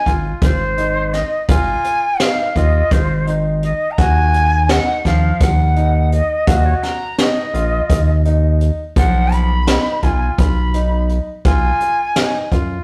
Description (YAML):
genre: progressive instrumental, band music in an uneven meter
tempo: 169 BPM (eighths)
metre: 7/8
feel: straight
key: unclear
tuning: A4 = 437 Hz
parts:
  - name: jazz flute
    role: melody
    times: 0.0-12.5 s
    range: C5 to B5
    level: -22 LUFS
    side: equal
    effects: none
  - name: bright grand piano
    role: arpeggios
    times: 0.1-12.8 s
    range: F3 to Gb4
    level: -26 LUFS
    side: equal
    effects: none
  - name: rubbery square bass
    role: bass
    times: 0.1-12.8 s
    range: Ab1 to F#2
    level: -19 LUFS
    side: equal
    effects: none
  - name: jazz brush drum kit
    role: drums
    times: 0.1-12.7 s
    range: hi-hat, kick drum, snare drum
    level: -20 LUFS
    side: equal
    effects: none
room: wet stone room reverb, RT60 1.1 s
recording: rough rehearsal-room recording, tube saturation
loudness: -16 LUFS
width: mono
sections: 0.0-12.8 A section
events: none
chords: 0.0 Ab5; 4.0 Ebm; 9.0 B6